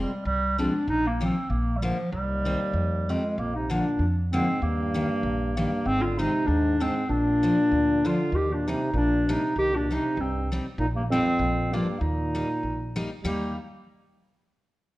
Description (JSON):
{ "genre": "alpine folk, alpine dance band", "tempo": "97 BPM", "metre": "2/4", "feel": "swing 54% on 8ths", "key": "Eb major", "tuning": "A4 = 440 Hz", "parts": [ { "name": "mellow clarinet", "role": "melody", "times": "0.0-13.6 s", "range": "F3 to G4", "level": "-26 LUFS", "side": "equal", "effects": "none" }, { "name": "picked steel-string acoustic guitar", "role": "accompaniment", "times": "0.0-13.6 s", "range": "D3 to Eb4", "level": "-31 LUFS", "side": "left 2 dB", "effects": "none" }, { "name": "upright bass", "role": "bass", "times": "0.0-13.6 s", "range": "Ab1 to F2", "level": "-29 LUFS", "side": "equal", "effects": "none" }, { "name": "dark euphonium", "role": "second line", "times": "2.1-13.5 s", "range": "Eb2 to G3", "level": "-32 LUFS", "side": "right 2 dB", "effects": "none" } ], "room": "moderate recital hall reverb, RT60 1.4 s", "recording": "worn, warbling old tape, cassette tape, warbly pitch drift", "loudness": "-23 LUFS", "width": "side -17 dB against mid", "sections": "0.0-13.2 A section; 13.2-14.5 B section", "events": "none", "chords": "0.0 Fm; 0.9 Bbsus4; 1.5 Bb; 2.1 Cm; 3.4 Bb; 4.6 Eb; 5.9 Ab; 7.1 Bb; 8.3 Eb; 9.6 Cm; 10.8 Eb/Bb; 11.4 Bb; 12.0 Eb", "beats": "0.26 | 0.88 1.50 | 2.12 2.75 | 3.38 4.00 | 4.62 5.24 | 5.86 6.47 | 7.08 7.71 | 8.33 8.95 | 9.57 10.18 | 10.79 11.40 | 12.01 12.63 | 13.25" }